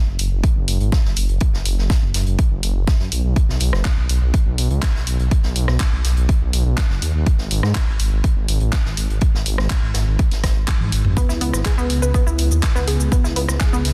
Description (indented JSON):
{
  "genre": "progressive house",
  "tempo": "123 BPM",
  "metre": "4/4",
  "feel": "straight",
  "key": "C# minor",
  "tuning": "A4 = 439 Hz",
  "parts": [
    { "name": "dark detuned saw bass", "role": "bass", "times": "0.1-13.9 s", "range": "F#1 to G#2", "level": "-21 LUFS", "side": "equal", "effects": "sidechain pumping" },
    { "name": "house drum kit", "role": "drums", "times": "0.2-13.9 s", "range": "handclaps, hi-hat, rim click, shaker, toms", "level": "-28 LUFS", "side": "equal", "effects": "soft clipping on snare" },
    { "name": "open jazz drum kit", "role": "drums", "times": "0.2-13.9 s", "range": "hi-hat, snare drum", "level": "-37 LUFS", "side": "equal", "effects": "high-pass filter on hats, high-pass filter on snare, high-pass filter on room" },
    { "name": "electronic kick drum", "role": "drums", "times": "0.4-13.7 s", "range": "none", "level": "-20 LUFS", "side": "equal", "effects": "none" },
    { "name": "analog pluck", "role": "arpeggios", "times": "11.2-13.8 s", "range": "B3 to B4", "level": "-26 LUFS", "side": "equal", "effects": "chorus, sidechain pumping, tape echo" }
  ],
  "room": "little or no reverb",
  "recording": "dense, heavily limited modern master",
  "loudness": "-19 LUFS",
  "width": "mono",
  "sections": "0.0-13.9 A section",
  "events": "drum fill 10.7-11.2",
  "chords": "0.0 N.C.; 11.2 C#7(no3)"
}